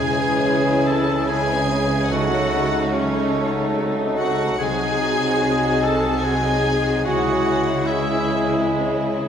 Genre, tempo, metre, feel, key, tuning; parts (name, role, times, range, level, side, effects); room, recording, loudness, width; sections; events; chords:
classical, slow romantic movement for symphony orchestra; 73 BPM; 3/4; rubato; C# minor; A4 = 440 Hz
warm chamber violin section; melody; 0.0-8.7 s; C#5 to A5; -28 LUFS; left 5 dB
dark chamber violin section; second line; 0.0-9.3 s; G#3 to F#4; -28 LUFS; left 3 dB
warm oboe; second line; 0.0-8.7 s; C#4 to A4; -27 LUFS; right 1 dB
warm studio viola section; accompaniment; 0.0-8.6 s; C#4 to A4; -26 LUFS; equal
mellow French horn section; sustained chords; 0.0-9.3 s; E3 to E4; -25 LUFS; left 2 dB
concert harp; arpeggios; 0.0-9.3 s; B#2 to A5; -28 LUFS; left 2 dB
mellow trumpet; stabs; 0.0-9.3 s; G#4 to A4; -28 LUFS; right 2 dB
warm chamber cello section; bass; 0.0-9.3 s; B#2 to C#3; -27 LUFS; right 2 dB
warm studio double bass section; bass; 0.0-9.3 s; B#1 to C#2; -28 LUFS; right 3 dB
wet recital hall reverb, RT60 1.8 s; recorded in a church or concert hall; -18 LUFS; side -8 dB against mid
0.0-9.3 A section
0.0 C#m; 2.1 D#m7b5/C#; 4.6 G#7/B#; 7.0 C#m